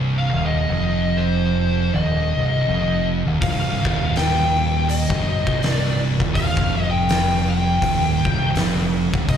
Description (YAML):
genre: stoner and doom metal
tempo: 82 BPM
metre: 4/4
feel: swing 59% on 8ths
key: C minor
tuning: A4 = 441 Hz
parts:
  - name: thick fuzz guitar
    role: riff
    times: 0.0-9.4 s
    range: C2 to F#2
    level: -26 LUFS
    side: left 8 dB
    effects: distortion, slapback echo
  - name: thick fuzz guitar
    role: riff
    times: 0.0-9.4 s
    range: C2 to F#2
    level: -23 LUFS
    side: right 8 dB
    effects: distortion
  - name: growling fingered electric bass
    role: bass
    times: 0.0-9.4 s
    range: C1 to F#1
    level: -24 LUFS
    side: left 1 dB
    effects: overdrive
  - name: fuzz lead guitar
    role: melody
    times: 0.2-9.4 s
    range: C5 to G5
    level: -24 LUFS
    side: left 2 dB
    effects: distortion, slapback echo, digital delay
  - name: oversized low-tuned drum kit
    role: drums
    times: 3.4-9.4 s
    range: hi-hat, kick drum, snare drum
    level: -24 LUFS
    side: left 1 dB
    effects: none
room: small room ambience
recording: live gig heard through the venue's PA, recital hall reverb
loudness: -17 LUFS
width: side -8 dB against mid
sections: 0.0-9.4 A section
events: none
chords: 0.0 Cm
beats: | 0.48 1.22 1.95 2.68 | 3.42 4.15 4.89 5.62 | 6.36 7.09 7.82 8.55 | 9.29